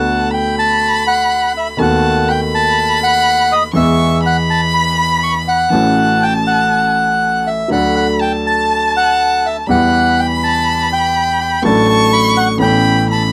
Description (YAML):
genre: tango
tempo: 122 BPM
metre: 4/4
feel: rubato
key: D major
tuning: A4 = 440 Hz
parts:
  - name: bandoneon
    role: melody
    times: 0.0-13.2 s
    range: D#5 to C#6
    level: -17 LUFS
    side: equal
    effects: none
  - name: warm violin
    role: second line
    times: 0.0-13.3 s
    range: A5 to C#6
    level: -21 LUFS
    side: equal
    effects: none
  - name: warm grand piano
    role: accompaniment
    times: 0.0-13.3 s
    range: A1 to A4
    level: -18 LUFS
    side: equal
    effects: none
room: light reverb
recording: dry, close 1970s-style studio recording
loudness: -14 LUFS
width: mono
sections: 0.0-13.3 A section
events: none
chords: 0.0 D6; 1.8 B7/D#; 3.8 E; 5.7 A6; 7.7 D; 9.7 Emadd9; 11.6 D/A; 12.6 Aadd9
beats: 0.31 0.81 1.30 | 1.80 2.29 2.78 3.27 | 3.75 4.24 4.73 5.23 | 5.72 6.21 6.71 7.21 | 7.71 8.21 8.71 9.20 | 9.69 10.18 10.67 11.16 | 11.64 12.13 12.61 13.10